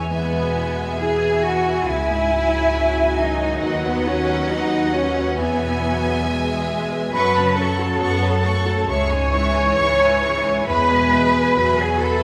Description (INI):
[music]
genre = cinematic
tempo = 68 BPM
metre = 4/4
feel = rubato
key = unclear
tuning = A4 = 440 Hz
[part]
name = warm studio violin section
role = melody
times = 0.0-12.2 s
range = F#5 to C#6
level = -30 LUFS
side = equal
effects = none
[part]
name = rich studio violin section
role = second line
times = 0.0-12.2 s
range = G#4 to A5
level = -33 LUFS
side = equal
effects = none
[part]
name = dark baby grand piano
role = accompaniment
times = 0.0-12.2 s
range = C#2 to F#5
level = -30 LUFS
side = equal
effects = none
[part]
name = rich studio viola section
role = accompaniment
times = 0.0-12.2 s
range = E3 to B3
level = -31 LUFS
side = equal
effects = none
[part]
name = rich studio double bass section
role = bass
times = 0.0-12.2 s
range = C#2 to F#2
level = -27 LUFS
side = equal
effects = none
[part]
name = mellow hollow silver concert flute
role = second line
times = 0.1-12.2 s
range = B4 to C#6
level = -27 LUFS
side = equal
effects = none
[part]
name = mellow French horn section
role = sustained chords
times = 0.1-12.2 s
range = D#3 to C#5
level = -29 LUFS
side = equal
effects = none
[part]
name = rich studio cello section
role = bass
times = 0.1-12.2 s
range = B3 to C#5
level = -25 LUFS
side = equal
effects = none
[sound]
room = wet recital hall reverb, RT60 1.4 s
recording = recorded in a church or concert hall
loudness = -19 LUFS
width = mono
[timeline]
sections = 0.0-12.2 A section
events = none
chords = 0.1 E; 1.9 C#m; 3.6 B/D#; 5.4 E; 7.1 F#m; 8.9 C#m; 10.7 E